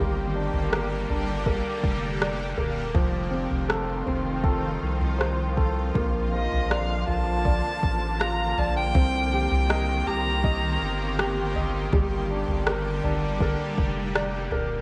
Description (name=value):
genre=pop ballad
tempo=81 BPM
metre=4/4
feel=straight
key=unclear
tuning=A4 = 440 Hz
part: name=clear baby grand piano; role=accompaniment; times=0.0-14.8 s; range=F3 to Eb5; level=-32 LUFS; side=equal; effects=none
part: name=shimmering ambient pad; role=sustained chords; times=0.0-14.8 s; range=D3 to G4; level=-33 LUFS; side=equal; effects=chorus, built-in reverb
part: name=saturated sub bass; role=bass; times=0.0-14.8 s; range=Eb1 to C2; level=-31 LUFS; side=equal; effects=none
part: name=smooth R&B drum kit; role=drums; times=0.5-14.7 s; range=kick drum, rim click, toms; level=-30 LUFS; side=equal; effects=none
part: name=rich violin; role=melody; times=6.3-11.6 s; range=Eb5 to Bb5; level=-31 LUFS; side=equal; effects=slapback echo
room=moderate spring reverb, RT60 2.3 s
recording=none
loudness=-26 LUFS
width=mono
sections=0.0-14.8 A section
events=none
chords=0.0 Gm; 2.9 F7; 5.9 Bbmaj7; 9.0 Cm7; 11.9 Gm